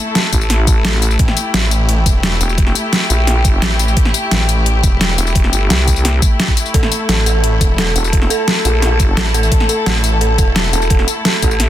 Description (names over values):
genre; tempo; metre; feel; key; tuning
dark technical drum and bass; 173 BPM; 4/4; straight; unclear; A4 = 441 Hz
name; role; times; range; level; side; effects
clear studio string section; sustained chords; 0.0-11.7 s; A3 to A4; -20 LUFS; left 3 dB; vintage 12-bit sampler grit, sidechain pumping
dubstep drum kit; drums; 0.2-11.7 s; hi-hat, snare drum, tambourine; -17 LUFS; left 1 dB; overdrive, studio reverb
vowel-sweep wobble bass; bass; 0.3-11.7 s; E1 to C2; -15 LUFS; equal; chorus
electronic kick drum; drums; 0.3-11.5 s; none; -14 LUFS; equal; overdrive, studio reverb
snarling distorted saw bass; bass; 1.2-10.7 s; E1 to A1; -16 LUFS; equal; distortion, sidechain pumping
dark detuned synth bell; arpeggios; 6.7-11.5 s; A4; -21 LUFS; right 4 dB; chorus, sidechain pumping, ping-pong delay
room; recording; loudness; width
digital ambience; dense, heavily limited modern master; -11 LUFS; side -12 dB against mid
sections
0.0-11.7 A section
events
none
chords
0.0 A5